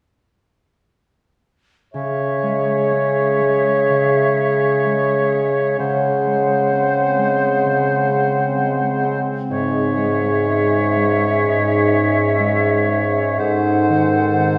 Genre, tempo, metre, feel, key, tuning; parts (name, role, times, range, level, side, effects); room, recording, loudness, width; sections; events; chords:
classical, slow romantic movement for symphony orchestra; 63 BPM; 4/4; uneven beats, rubato; C# minor; A4 = 439 Hz
clear clarinet; second line; 1.9-14.6 s; G#4 to A4; -25 LUFS; equal
silver concert flute; second line; 1.9-14.6 s; E5 to F#5; -25 LUFS; equal
warm oboe; second line; 1.9-14.6 s; B#4 to C#5; -26 LUFS; equal
warm bassoon; accompaniment; 1.9-14.6 s; G#2 to C#3; -23 LUFS; equal
concert harp; arpeggios; 1.9-14.6 s; G#2 to C#4; -24 LUFS; equal
wet concert hall reverb, RT60 2.3 s; heard from further back in the room; -17 LUFS; mono
1.9-14.6 A section
1.9 C#m; 5.8 G#7/C#; 9.5 C#m/G#; 13.4 G#7b9